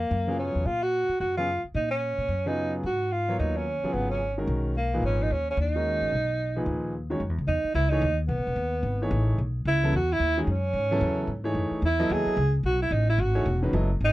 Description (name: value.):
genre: jazz.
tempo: 220 BPM.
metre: 4/4.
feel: swing 60% on 8ths.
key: F# dorian from 7.2 s.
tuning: A4 = 440 Hz.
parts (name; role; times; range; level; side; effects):
mellow tenor saxophone; melody; 0.0-14.1 s; Bb3 to G#4; -27 LUFS; right 1 dB; none.
upright bass; bass; 0.0-14.1 s; E1 to Bb2; -27 LUFS; equal; none.
clear grand piano; accompaniment; 0.3-13.9 s; Bb2 to D#5; -30 LUFS; equal; none.
room: little or no reverb.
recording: dry, close 1970s-style studio recording.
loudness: -24 LUFS.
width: side -17 dB against mid.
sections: 0.0-7.2 A section; 7.2-14.1 B section.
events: none.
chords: 0.0 Ebm11 (rootless); 2.8 Abm11; 7.2 F#13sus4.